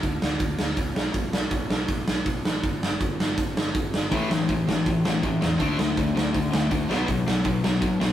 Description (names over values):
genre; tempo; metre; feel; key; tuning
punk rock; 162 BPM; 4/4; straight; unclear; A4 = 440 Hz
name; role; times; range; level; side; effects
growling picked electric bass; bass; 0.0-8.1 s; G1 to E2; -32 LUFS; equal; overdrive
big rock drum kit; drums; 0.0-8.1 s; hi-hat, kick drum, snare drum; -24 LUFS; right 1 dB; none
sludgy distorted guitar; riff; 4.1-8.1 s; A2 to D4; -24 LUFS; left 4 dB; overdrive
tight distorted guitar; riff; 4.1-8.1 s; A2 to D4; -31 LUFS; right 4 dB; distortion
room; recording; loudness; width
light reverb; rough rehearsal-room recording; -22 LUFS; side -11 dB against mid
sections
0.0-8.1 A section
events
none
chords
0.0 N.C.; 4.1 A5; 5.6 D5; 6.9 B5